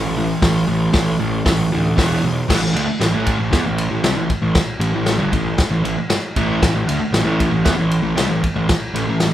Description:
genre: garage rock duo or trio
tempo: 116 BPM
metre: 4/4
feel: straight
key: unclear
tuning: A4 = 440 Hz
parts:
  - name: fuzz guitar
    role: riff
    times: 0.0-9.3 s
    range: E2 to B3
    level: -18 LUFS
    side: right 1 dB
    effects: distortion
  - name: fuzz picked electric bass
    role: bass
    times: 0.0-9.3 s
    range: E1 to E2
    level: -24 LUFS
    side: equal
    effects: overdrive
  - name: vintage drum kit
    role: drums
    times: 0.4-9.3 s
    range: crash cymbal, hi-hat, kick drum, ride cymbal, snare drum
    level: -20 LUFS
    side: left 1 dB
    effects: none
room: light reverb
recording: band playing live in one room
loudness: -15 LUFS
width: side -12 dB against mid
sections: 0.0-2.5 A section; 2.5-9.3 B section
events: none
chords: 0.0 A5; 2.0 E5; 2.5 A5

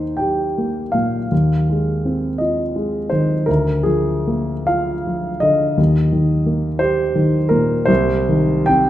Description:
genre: classical, romantic nocturne for solo piano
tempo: 46-59 BPM (dotted quarters)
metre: 12/8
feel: rubato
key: Eb major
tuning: A4 = 440 Hz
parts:
  - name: warm concert grand piano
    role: solo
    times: 0.0-8.9 s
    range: C2 to G5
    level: -15 LUFS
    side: equal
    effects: none
room: wet recital hall reverb, RT60 1.4 s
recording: minimal, uncompressed stereo recording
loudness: -16 LUFS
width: side -13 dB against mid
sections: 0.0-8.9 A section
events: none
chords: 0.0 Eb; 1.3 Fm7/Eb; 3.5 Bb7/D; 5.8 Eb; 7.9 Cm

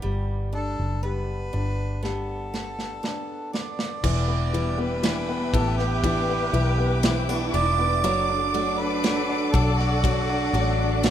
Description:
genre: pop ballad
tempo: 60 BPM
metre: 4/4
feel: straight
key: E minor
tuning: A4 = 441 Hz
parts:
  - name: warm grand piano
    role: accompaniment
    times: 0.0-11.1 s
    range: E3 to D4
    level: -30 LUFS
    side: left 4 dB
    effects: none
  - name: picked steel-string acoustic guitar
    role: arpeggios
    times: 0.0-11.1 s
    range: E2 to A4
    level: -35 LUFS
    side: right 6 dB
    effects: none
  - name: vintage muted fingered electric bass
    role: bass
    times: 0.0-11.1 s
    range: E1 to B1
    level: -26 LUFS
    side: equal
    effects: none
  - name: mellow harmonica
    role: melody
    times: 0.5-11.1 s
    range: F#4 to D5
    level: -29 LUFS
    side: right 4 dB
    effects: none
  - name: modern studio drum kit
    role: drums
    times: 2.0-11.1 s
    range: crash cymbal, kick drum, ride cymbal, snare drum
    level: -28 LUFS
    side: equal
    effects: none
  - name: warm studio string section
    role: sustained chords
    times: 4.0-11.1 s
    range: A4 to D6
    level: -30 LUFS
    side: left 3 dB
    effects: none
  - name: dark studio cello section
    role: second line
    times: 4.1-11.1 s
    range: B3 to E4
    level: -32 LUFS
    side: right 3 dB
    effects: none
room: little or no reverb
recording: rough home demo mix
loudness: -22 LUFS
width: side -10 dB against mid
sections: 0.0-4.0 A section; 4.0-11.1 B section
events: drum fill 2.0-4.0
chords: 0.0 Gadd9; 4.0 Em7; 8.0 D/F#

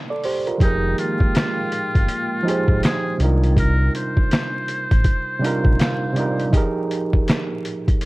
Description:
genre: lo-fi hip hop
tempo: 81 BPM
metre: 4/4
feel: swing 61% on 16ths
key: F dorian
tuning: A4 = 440 Hz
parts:
  - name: overdriven reed electric piano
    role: accompaniment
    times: 0.0-8.1 s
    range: C3 to F5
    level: -23 LUFS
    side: right 2 dB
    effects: cassette tape, low-pass filter
  - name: lo-fi sampler-style drum kit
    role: drums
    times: 0.2-8.1 s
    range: finger snaps, hi-hat, kick drum, snare drum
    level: -19 LUFS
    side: equal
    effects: none
  - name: trumpet with metal mute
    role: melody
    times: 0.6-6.5 s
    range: Eb4 to C5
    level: -26 LUFS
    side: equal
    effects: low-pass filter
  - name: hollow soft pad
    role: sustained chords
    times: 0.8-3.6 s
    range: Eb3 to G5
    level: -29 LUFS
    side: equal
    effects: chorus, low-pass filter
  - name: sub bass with octave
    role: bass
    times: 0.6-5.8 s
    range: F1 to C2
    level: -19 LUFS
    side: equal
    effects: none
room: little or no reverb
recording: vinyl crackle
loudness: -17 LUFS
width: side -21 dB against mid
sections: 0.0-8.1 A section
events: reed electric piano fill 5.4-6.5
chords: 0.0 Cm11; 0.6 Fm11; 3.2 Cm11; 6.5 Fm11

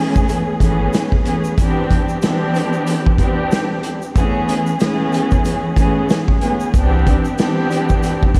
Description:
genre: hip hop, boom-bap hip-hop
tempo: 93 BPM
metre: 4/4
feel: swing 57% on 16ths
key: unclear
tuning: A4 = 440 Hz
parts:
  - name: warm studio string section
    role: accompaniment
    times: 0.0-8.4 s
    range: E3 to G#4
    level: -20 LUFS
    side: equal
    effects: cassette tape, high-pass filter, low-pass filter
  - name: tube shaker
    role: percussion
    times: 0.1-8.4 s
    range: none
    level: -45 LUFS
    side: equal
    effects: none
  - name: vintage drum kit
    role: drums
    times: 0.2-8.4 s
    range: hi-hat, kick drum, snare drum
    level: -20 LUFS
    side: equal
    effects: none
  - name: soft dub sub bass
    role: bass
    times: 0.6-0.9, 6.7-8.4 s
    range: G#1 to C2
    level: -19 LUFS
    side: equal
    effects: none
room: moderate lush hall reverb, RT60 3.0 s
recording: dreamy mix soaked in reverb, vinyl crackle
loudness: -17 LUFS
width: mono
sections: 0.0-8.4 A section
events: none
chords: 0.0 Amaj9; 1.6 Cmaj9; 4.2 Amaj9; 6.7 Cmaj9

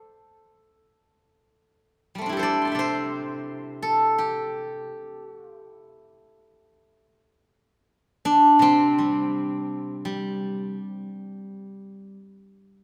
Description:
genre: chinese traditional, Chinese solo plucked strings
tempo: 85 BPM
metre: 4/4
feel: rubato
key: unclear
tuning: A4 = 438 Hz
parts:
  - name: steel-string zither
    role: solo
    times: 0.0-12.2 s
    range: C3 to C6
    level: -24 LUFS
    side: equal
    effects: none
room: wet concert hall reverb, RT60 2.6 s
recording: none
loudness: -23 LUFS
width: mono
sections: 0.0-7.2 A section; 7.2-12.8 B section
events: none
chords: none

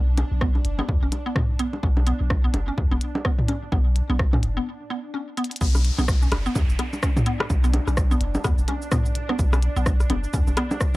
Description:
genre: minimal techno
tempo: 127 BPM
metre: 4/4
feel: swing 59% on 16ths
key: B minor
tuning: A4 = 440 Hz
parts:
  - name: punchy sub bass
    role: bass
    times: 0.0-10.5 s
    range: F#1 to E2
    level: -24 LUFS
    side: equal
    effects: sidechain pumping
  - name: swarming drone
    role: texture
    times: 0.0-11.0 s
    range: D4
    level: -37 LUFS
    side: right 1 dB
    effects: built-in reverb, sidechain pumping
  - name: mallet-like synth pluck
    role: riff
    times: 0.2-10.6 s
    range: B3 to C#4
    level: -30 LUFS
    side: equal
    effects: ensemble chorus, sidechain pumping, tape echo
  - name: minimal click drum kit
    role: drums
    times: 0.2-10.9 s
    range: cabasa, crash cymbal, hi-hat, rim click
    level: -30 LUFS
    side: equal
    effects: none
  - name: organic electronic drum kit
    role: percussion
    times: 0.2-10.8 s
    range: bongos, rim click, toms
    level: -27 LUFS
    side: equal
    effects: analog delay
  - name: electronic kick drum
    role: drums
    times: 0.4-10.9 s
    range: none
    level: -23 LUFS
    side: equal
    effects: none
  - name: downlifter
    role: sound effects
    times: 5.6-9.4 s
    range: none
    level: -36 LUFS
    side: left 1 dB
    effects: none
room: little or no reverb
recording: dry, gritty hardware recording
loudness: -20 LUFS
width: side -19 dB against mid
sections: 0.0-5.6 A section; 5.6-11.0 B section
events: break 4.7-5.6; drum fill 5.4; drop 5.6-11.0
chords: 0.0 B5

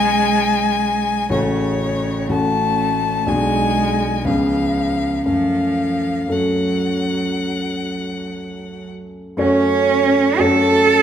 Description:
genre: classical, slow romantic movement for piano trio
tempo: 57-64 BPM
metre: 4/4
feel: rubato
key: F# minor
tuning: A4 = 441 Hz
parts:
  - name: rich violin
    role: melody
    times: 0.0-11.0 s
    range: C#5 to A5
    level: -22 LUFS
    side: left 6 dB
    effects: none
  - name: rich cello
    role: second line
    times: 0.0-11.0 s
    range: C#3 to A4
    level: -20 LUFS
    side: right 6 dB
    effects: none
  - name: warm concert grand piano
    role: accompaniment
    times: 0.0-11.0 s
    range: A1 to C#5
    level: -20 LUFS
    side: left 1 dB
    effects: none
room: wet recital hall reverb, RT60 1.6 s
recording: none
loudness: -16 LUFS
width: side -9 dB against mid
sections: 0.0-9.4 A section; 9.4-11.0 A section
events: none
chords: 0.0 C#7/B; 1.3 F#m/A; 3.3 G#m7b5/B; 4.3 C#7; 5.3 F#m

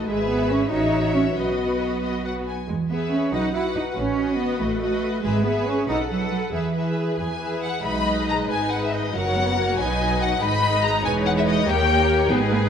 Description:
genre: quick classical-period movement for string orchestra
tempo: 94 BPM (dotted quarters)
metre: 6/8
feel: rubato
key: E major, B major from 7.8 s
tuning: A4 = 441 Hz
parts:
  - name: warm symphonic violin section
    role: melody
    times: 0.0-12.3 s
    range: D#5 to B5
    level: -26 LUFS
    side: left 5 dB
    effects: none
  - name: rich symphonic violin section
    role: second line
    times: 0.0-12.7 s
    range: G#4 to D#5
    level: -28 LUFS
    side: left 3 dB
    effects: none
  - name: rich symphonic viola section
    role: accompaniment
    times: 0.0-12.7 s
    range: F#3 to A4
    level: -26 LUFS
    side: right 1 dB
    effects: none
  - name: dark symphonic cello section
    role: bass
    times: 0.0-12.7 s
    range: D#2 to E4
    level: -26 LUFS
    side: right 2 dB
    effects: none
  - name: rich symphonic double bass section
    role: bass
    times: 0.0-12.7 s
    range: E1 to E2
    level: -28 LUFS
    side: right 3 dB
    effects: none
room: wet scoring stage reverb, RT60 1.8 s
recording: none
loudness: -20 LUFS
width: side -8 dB against mid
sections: 0.0-7.8 A section; 7.8-12.7 B section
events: none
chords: 0.1 E/G#; 0.7 F#m7/A; 1.4 B; 2.7 E; 3.3 B; 4.0 B7/A; 5.2 E/G#; 5.9 B7; 6.5 E; 7.8 B; 9.1 F#; 9.8 B; 10.4 G#m; 11.7 D#7

